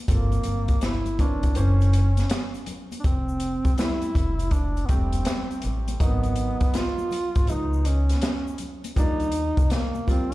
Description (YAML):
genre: hip hop, jazz-hop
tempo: 81 BPM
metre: 4/4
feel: swing 66% on 16ths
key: unclear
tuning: A4 = 440 Hz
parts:
  - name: mellow duduk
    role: melody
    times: 0.1-10.3 s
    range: Bb3 to F4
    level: -29 LUFS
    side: right 1 dB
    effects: none
  - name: warm upright piano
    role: accompaniment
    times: 0.1-10.3 s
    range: E3 to B#4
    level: -34 LUFS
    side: right 2 dB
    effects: none
  - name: upright bass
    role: bass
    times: 0.1-10.3 s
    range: E1 to Eb2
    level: -24 LUFS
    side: equal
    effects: none
  - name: open jazz drum kit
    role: drums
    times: 0.1-10.3 s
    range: hi-hat, kick drum, snare drum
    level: -25 LUFS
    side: equal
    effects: none
  - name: tube shaker and congas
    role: percussion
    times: 0.1-10.3 s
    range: none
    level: -41 LUFS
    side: left 4 dB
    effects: none
room: little or no reverb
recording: played on a big sound system in a bare room, large studio reverb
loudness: -21 LUFS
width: side -17 dB against mid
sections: 0.0-10.3 A section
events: none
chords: 0.1 Gm11; 1.6 F#7#11; 3.0 Fmaj7; 6.0 Abm7; 7.5 Db9; 9.0 Ebmaj9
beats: | 0.08 0.82 1.56 2.30 | 3.04 3.78 4.53 5.27 | 6.01 6.75 7.49 8.23 | 8.97 9.71